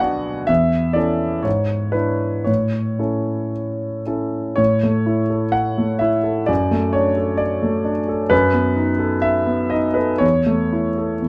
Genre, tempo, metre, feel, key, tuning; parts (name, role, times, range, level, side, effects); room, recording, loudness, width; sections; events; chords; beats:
classical, romantic character piece for solo piano; 56-66 BPM; 2/4; rubato; A major; A4 = 442 Hz
warm concert grand piano; solo; 0.0-11.3 s; B1 to G#5; -19 LUFS; equal
light reverb; close, detailed microphones; -19 LUFS; mono
0.0-4.6 A section; 4.6-11.3 A section
0.5 A/E; 1.5 E7/G#; 2.5 A; 6.5 D/F#; 8.3 B7/F#; 10.2 A/E
| 0.49 1.45 | 2.48 3.54 | 4.58 5.55 | 6.50 7.41 | 8.32 9.25 | 10.23 11.24